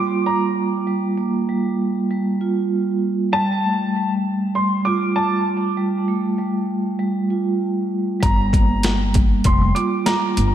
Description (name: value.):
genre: hip hop, boom-bap hip-hop.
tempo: 98 BPM.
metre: 4/4.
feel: swing 61% on 16ths.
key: G minor.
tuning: A4 = 440 Hz.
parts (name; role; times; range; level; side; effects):
warm upright piano; melody; 0.0-10.3 s; A5 to D6; -23 LUFS; equal; high-pass filter, low-pass filter, analog delay.
vibraphone with soft mallets; accompaniment; 0.0-10.5 s; G3 to F4; -20 LUFS; right 2 dB; cassette tape, high-pass filter, low-pass filter.
upright bass; bass; 8.2-10.5 s; F1 to G1; -21 LUFS; equal; none.
boom bap sampler-style drum kit; drums; 8.2-10.5 s; hi-hat, kick drum, snare drum; -18 LUFS; left 1 dB; overdrive.
room: moderate lush hall reverb, RT60 2.6 s.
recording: dreamy mix soaked in reverb.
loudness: -18 LUFS.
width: side -10 dB against mid.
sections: 0.0-10.5 A section.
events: none.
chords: 0.0 Gm7; 3.3 Fadd9; 8.2 Gm7.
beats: 0.27 | 0.88 1.49 2.10 2.72 | 3.33 3.94 4.55 5.17 | 5.78 6.39 7.00 7.61 | 8.23 8.84 9.45 10.06.